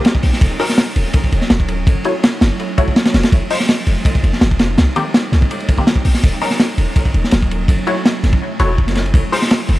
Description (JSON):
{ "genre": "drum and bass, jungle", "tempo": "165 BPM", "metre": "4/4", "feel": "straight", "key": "unclear", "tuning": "A4 = 439 Hz", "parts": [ { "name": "ethereal airy pad", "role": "sustained chords", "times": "0.0-9.8 s", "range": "F3 to Fb4", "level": "-25 LUFS", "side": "right 2 dB", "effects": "ensemble chorus, built-in reverb, vintage 12-bit sampler grit" }, { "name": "filtered dub chord stab", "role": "stabs", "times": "0.0-9.8 s", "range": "Eb3 to Db5", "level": "-22 LUFS", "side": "left 2 dB", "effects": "phaser, dub echo" }, { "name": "crunchy breakbeat drum kit", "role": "drums", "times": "0.0-9.8 s", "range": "hi-hat, kick drum, ride cymbal, snare drum", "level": "-14 LUFS", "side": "equal", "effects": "none" }, { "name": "warm 808-style bass", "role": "bass", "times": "0.2-9.8 s", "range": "Eb1 to C2", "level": "-16 LUFS", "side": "equal", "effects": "tube saturation" } ], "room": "studio reverb", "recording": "dry, gritty hardware recording, vinyl crackle", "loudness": "-12 LUFS", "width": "side -17 dB against mid", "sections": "0.0-9.8 A section", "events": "none", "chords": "0.4 Ebm7; 1.9 Gbm7; 3.3 Fm7; 4.8 Cm7; 6.2 Ebm7; 7.7 Gbm7; 9.1 Fm7" }